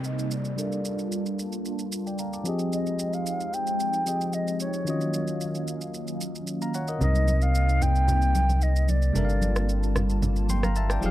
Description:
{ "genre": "amapiano", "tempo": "112 BPM", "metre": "4/4", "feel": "straight", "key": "unclear", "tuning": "A4 = 442 Hz", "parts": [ { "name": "breathy jazz flute", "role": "melody", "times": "0.0-10.0 s", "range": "Db5 to G5", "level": "-30 LUFS", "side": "equal", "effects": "low-pass filter, digital delay" }, { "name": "bell-like tine electric piano", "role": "accompaniment", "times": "0.0-11.1 s", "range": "C3 to D6", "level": "-30 LUFS", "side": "left 2 dB", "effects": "low-pass filter" }, { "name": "hollow soft pad", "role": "sustained chords", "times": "0.0-11.1 s", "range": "C3 to A5", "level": "-32 LUFS", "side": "right 1 dB", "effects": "ensemble chorus, low-pass filter" }, { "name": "electronic shaker and rim click", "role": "drums", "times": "0.0-11.1 s", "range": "none", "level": "-36 LUFS", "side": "right 2 dB", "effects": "none" }, { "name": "downlifter", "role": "sound effects", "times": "0.0-2.7 s", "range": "none", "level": "-47 LUFS", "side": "equal", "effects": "none" }, { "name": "warm sub bass", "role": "bass", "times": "7.0-11.1 s", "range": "F1 to C2", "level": "-23 LUFS", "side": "equal", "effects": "none" }, { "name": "congas", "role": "percussion", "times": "7.0-11.1 s", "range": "none", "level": "-32 LUFS", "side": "right 2 dB", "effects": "none" } ], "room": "little or no reverb", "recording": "dark, warm production", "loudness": "-24 LUFS", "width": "side -14 dB against mid", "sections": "0.0-11.1 A section", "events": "filter sweep 0.0-11.1", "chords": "0.0 Cm7; 0.6 Gm7; 2.5 Fm7; 4.9 Ebm7; 7.0 Cm7; 9.2 Gm7", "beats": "0.05 | 0.58 1.12 1.65 2.19 | 2.73 3.26 3.80 4.33 | 4.87 5.40 5.94 6.47 | 7.01 7.55 8.08 8.62 | 9.15 9.69 10.22 10.76" }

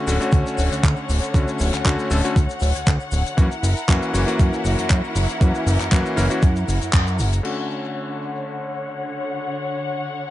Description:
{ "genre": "nu-disco, nu disco", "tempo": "118 BPM", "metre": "4/4", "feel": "swing 53% on 16ths", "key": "D major", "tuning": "A4 = 437 Hz", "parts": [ { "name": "bright electric grand piano", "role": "accompaniment", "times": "0.0-10.3 s", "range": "D3 to A#4", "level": "-26 LUFS", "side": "left 1 dB", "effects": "vintage 12-bit sampler grit, dub echo" }, { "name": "clear studio string section", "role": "sustained chords", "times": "0.0-10.3 s", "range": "D3 to F#5", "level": "-27 LUFS", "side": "left 1 dB", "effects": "sidechain pumping, low-pass filter" }, { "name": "fat analog bass", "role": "bass", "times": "0.1-7.4 s", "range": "D1 to F#2", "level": "-21 LUFS", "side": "equal", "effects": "sidechain pumping" }, { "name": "tight funk drum kit", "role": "drums", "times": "0.1-7.6 s", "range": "crash cymbal, handclaps, hi-hat, shaker", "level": "-28 LUFS", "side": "left 2 dB", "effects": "none" }, { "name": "tube shaker", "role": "percussion", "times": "0.1-7.4 s", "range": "none", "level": "-41 LUFS", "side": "left 1 dB", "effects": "none" }, { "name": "electronic kick drum", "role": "drums", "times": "0.3-7.0 s", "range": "none", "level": "-17 LUFS", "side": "equal", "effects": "overdrive" } ], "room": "light reverb", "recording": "echo-heavy mix, nothing above 10.6 kHz", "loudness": "-18 LUFS", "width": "side -14 dB against mid", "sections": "0.0-7.4 A section; 7.4-10.3 B section", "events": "band accent 6.9; filter sweep on string section 7.4-10.3", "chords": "0.0 Dmaj7; 3.4 F#7; 7.4 Dmaj7", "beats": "0.33 0.84 | 1.34 1.85 2.36 2.87 | 3.38 3.89 4.39 4.90 | 5.41 5.92 6.43 6.94 | 7.45 7.95 8.46 8.97 | 9.48 9.99" }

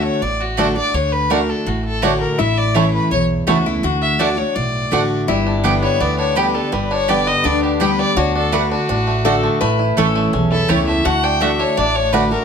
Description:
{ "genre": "bluegrass", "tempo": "166 BPM", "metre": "4/4", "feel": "straight", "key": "D major", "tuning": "A4 = 440 Hz", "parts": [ { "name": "warm fiddle", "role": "melody", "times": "0.0-12.4 s", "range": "F#4 to G5", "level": "-20 LUFS", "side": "left 2 dB", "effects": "none" }, { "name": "lap resonator guitar", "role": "second line", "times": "0.0-12.4 s", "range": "D4 to B4", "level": "-24 LUFS", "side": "left 6 dB", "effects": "none" }, { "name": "picked steel-string acoustic guitar", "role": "accompaniment", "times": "0.0-12.4 s", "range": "E2 to G4", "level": "-20 LUFS", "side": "equal", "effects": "none" }, { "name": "upright bass", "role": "bass", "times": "0.0-12.3 s", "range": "G1 to D2", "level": "-23 LUFS", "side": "right 1 dB", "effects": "none" }, { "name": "bluegrass banjo", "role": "arpeggios", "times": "0.6-12.4 s", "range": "G3 to G4", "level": "-22 LUFS", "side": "right 1 dB", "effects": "none" }, { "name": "mandolin", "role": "stabs", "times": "0.6-12.2 s", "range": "A3 to A5", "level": "-22 LUFS", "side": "right 6 dB", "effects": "none" } ], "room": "moderate studio reverb, RT60 0.8 s", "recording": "none", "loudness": "-14 LUFS", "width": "side -6 dB against mid", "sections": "0.0-5.3 A section; 5.3-12.4 B section", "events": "none", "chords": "0.0 D; 2.4 A; 3.8 D; 5.3 G; 8.2 D; 9.6 A; 11.1 D", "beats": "0.22 0.58 | 0.94 1.31 1.67 2.03 | 2.39 2.75 3.12 3.48 | 3.84 4.20 4.56 4.92 | 5.28 5.64 6.00 6.37 | 6.73 7.09 7.45 7.81 | 8.17 8.53 8.89 9.25 | 9.61 9.97 10.33 10.69 | 11.05 11.41 11.78 12.14" }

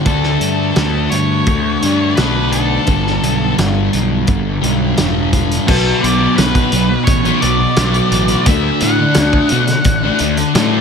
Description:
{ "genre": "rock, shoegaze and dream pop", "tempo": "86 BPM", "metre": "4/4", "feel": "straight", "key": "D major", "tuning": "A4 = 440 Hz", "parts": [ { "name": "fuzz guitar", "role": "riff", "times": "0.0-10.8 s", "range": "G2 to D4", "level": "-15 LUFS", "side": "left 1 dB", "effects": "distortion, lush chorus" }, { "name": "octave-fuzz lead guitar", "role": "melody", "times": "0.1-10.2 s", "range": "A4 to F#5", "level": "-20 LUFS", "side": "left 1 dB", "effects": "distortion, analog delay" }, { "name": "fuzz picked electric bass", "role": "bass", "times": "0.1-10.8 s", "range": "E1 to B2", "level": "-19 LUFS", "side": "equal", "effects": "overdrive" }, { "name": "loose indie drum kit", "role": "drums", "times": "0.1-10.7 s", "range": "crash cymbal, hi-hat, kick drum, snare drum", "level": "-18 LUFS", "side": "equal", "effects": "none" } ], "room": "small room ambience", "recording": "none", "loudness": "-12 LUFS", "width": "side -6 dB against mid", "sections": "0.0-5.7 A section; 5.7-10.8 B section", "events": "none", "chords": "0.1 D5; 2.9 Gadd9; 5.7 Bm7; 8.5 D", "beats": "| 0.06 0.77 1.47 2.18 | 2.88 3.58 4.29 4.99 | 5.69 6.38 7.08 7.78 | 8.47 9.16 9.86 10.55" }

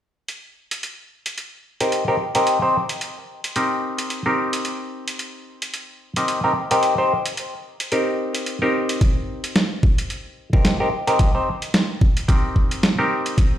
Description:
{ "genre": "glitch hop", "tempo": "110 BPM", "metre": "4/4", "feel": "swing 57% on 16ths", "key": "C minor", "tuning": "A4 = 440 Hz", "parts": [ { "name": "boom bap sampler-style drum kit", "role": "drums", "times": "0.3-13.5 s", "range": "hi-hat, snare drum", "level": "-23 LUFS", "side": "right 1 dB", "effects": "overdrive" }, { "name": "clav", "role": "stabs", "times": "1.8-13.6 s", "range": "C4 to C5", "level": "-21 LUFS", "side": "equal", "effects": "phaser, sidechain pumping, low-pass filter, tape echo" }, { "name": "electronic kick drum", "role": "drums", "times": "9.0-13.5 s", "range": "none", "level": "-16 LUFS", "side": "equal", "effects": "none" } ], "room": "moderate studio reverb, RT60 0.6 s", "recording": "played on a big sound system in a bare room, stone room reverb", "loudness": "-19 LUFS", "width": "side -11 dB against mid", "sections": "0.3-13.6 A section", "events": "none", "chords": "0.3 Cm7", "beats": "| 0.29 0.83 1.38 1.92 | 2.47 3.01 3.56 4.10 | 4.65 5.20 5.74 6.29 | 6.83 7.38 7.92 8.47 | 9.01 9.56 10.10 10.65 | 11.20 11.74 12.29 12.83 | 13.38" }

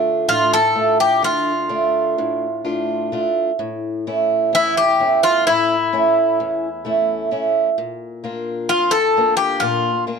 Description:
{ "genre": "greek folk, Greek bouzouki band", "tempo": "129 BPM (eighths)", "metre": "9/8", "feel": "straight", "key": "D harmonic minor", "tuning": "A4 = 440 Hz", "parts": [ { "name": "picked old ladder-braced acoustic guitar", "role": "accompaniment", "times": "0.0-10.2 s", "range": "E2 to F4", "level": "-19 LUFS", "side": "right 3 dB", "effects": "none" }, { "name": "Greek bouzouki", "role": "melody", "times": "0.3-10.0 s", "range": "E4 to A4", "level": "-17 LUFS", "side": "left 3 dB", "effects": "plate reverb" } ], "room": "moderate small room reverb, RT60 0.5 s", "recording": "dark, warm production", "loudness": "-16 LUFS", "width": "side -6 dB against mid", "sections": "0.0-10.2 A section", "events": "speeding up 0.0-10.2", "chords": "0.0 Dm; 3.6 A; 7.8 Bb", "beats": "0.28 0.76 1.23 1.71 2.18 2.65 3.12 | 3.59 4.06 4.53 5.00 5.46 5.93 6.39 6.86 7.32 | 7.78 8.24 8.70 9.16 9.62 10.08" }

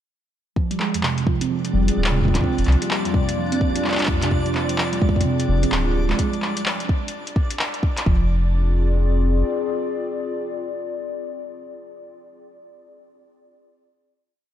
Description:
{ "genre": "IDM", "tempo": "128 BPM", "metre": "4/4", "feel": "swing 62% on 16ths", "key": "unclear", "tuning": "A4 = 440 Hz", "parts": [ { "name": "warbly tape-like pad", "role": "sustained chords", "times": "1.1-12.1 s", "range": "Bb3 to D5", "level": "-28 LUFS", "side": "left 2 dB", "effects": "chorus, built-in reverb, vintage 12-bit sampler grit" }, { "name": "harp-like synth pluck", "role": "arpeggios", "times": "0.6-8.3 s", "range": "F2 to C4", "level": "-24 LUFS", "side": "right 2 dB", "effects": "chorus, phaser, digital delay" }, { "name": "electronic kick drum", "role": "drums", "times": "0.6-8.2 s", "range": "none", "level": "-21 LUFS", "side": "equal", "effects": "none" }, { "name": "backwards swelling texture", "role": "texture", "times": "1.6-8.1 s", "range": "D4 to D5", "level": "-32 LUFS", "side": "equal", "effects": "built-in reverb" }, { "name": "electro analog drum machine", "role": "drums", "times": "0.7-8.0 s", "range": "handclaps, hi-hat", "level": "-27 LUFS", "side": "left 1 dB", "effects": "none" }, { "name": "warm sub bass", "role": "bass", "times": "1.7-9.4 s", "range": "D1 to C2", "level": "-19 LUFS", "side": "equal", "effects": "none" } ], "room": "digital ambience", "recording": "none", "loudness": "-19 LUFS", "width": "side -11 dB against mid", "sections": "0.6-8.1 groove; 8.1-11.8 final chord", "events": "none", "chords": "0.6 Fm6; 2.4 Gm7/F; 4.3 Fm6; 6.2 N.C.; 8.1 Fm6", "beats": "| 0.56 1.03 1.50 1.97 | 2.44 2.91 3.38 3.84 | 4.31 4.78 5.25 5.72 | 6.19 6.66 7.13 7.59 | 8.06 8.53 9.00 9.47 | 9.94 10.41 10.88 11.34" }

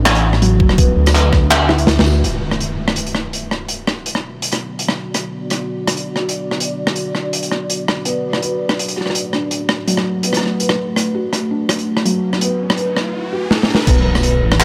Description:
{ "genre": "half-time drum and bass", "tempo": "165 BPM", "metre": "4/4", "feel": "half-time", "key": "B minor", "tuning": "A4 = 440 Hz", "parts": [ { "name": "felt-muted upright piano", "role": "arpeggios", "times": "0.0-2.3, 8.1-14.6 s", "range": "F#3 to B4", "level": "-23 LUFS", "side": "equal", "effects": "delay" }, { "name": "dark detuned saw bass", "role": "bass", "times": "0.0-2.2, 13.9-14.6 s", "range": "A1 to D2", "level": "-17 LUFS", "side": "equal", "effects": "none" }, { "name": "crunchy breakbeat drum kit", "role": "drums", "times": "0.1-14.6 s", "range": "crash cymbal, handclaps, hi-hat, rim click, snare drum, tambourine", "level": "-20 LUFS", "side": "equal", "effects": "none" }, { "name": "electronic kick drum", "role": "drums", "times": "0.6-1.4, 13.9 s", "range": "none", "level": "-15 LUFS", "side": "equal", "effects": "none" }, { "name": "deep dark ambient pad", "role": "sustained chords", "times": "4.2-14.6 s", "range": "A3 to D5", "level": "-26 LUFS", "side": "equal", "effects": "chorus, built-in reverb, sidechain pumping" }, { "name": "impact and riser", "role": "sound effects", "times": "2.2-3.7, 12.2-14.6 s", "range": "none", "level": "-27 LUFS", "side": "equal", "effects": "none" } ], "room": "light reverb", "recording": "none", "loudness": "-17 LUFS", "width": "mono", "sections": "0.0-2.2 A section; 2.2-13.9 B section", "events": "drop 0.0-2.2; drum fill 1.9-2.2, 13.5-13.9; band accent 2.0; impact 2.2-3.7, 13.9-14.6; filter sweep on ambient pad 2.2-13.9; riser 12.2-13.9", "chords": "0.0 D; 2.2 Bm; 8.1 D", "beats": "0.06 0.42 | 0.78 1.15 1.51 1.88 | 2.24 2.60 2.97 3.33 | 3.69 4.06 4.42 4.78 | 5.15 5.51 5.88 6.24 | 6.60 6.97 7.33 7.69 | 8.06 8.42 8.78 9.15 | 9.51 9.88 10.24 10.60 | 10.97 11.33 11.69 12.06 | 12.42 12.78 13.15 13.51 | 13.88 14.24 14.60" }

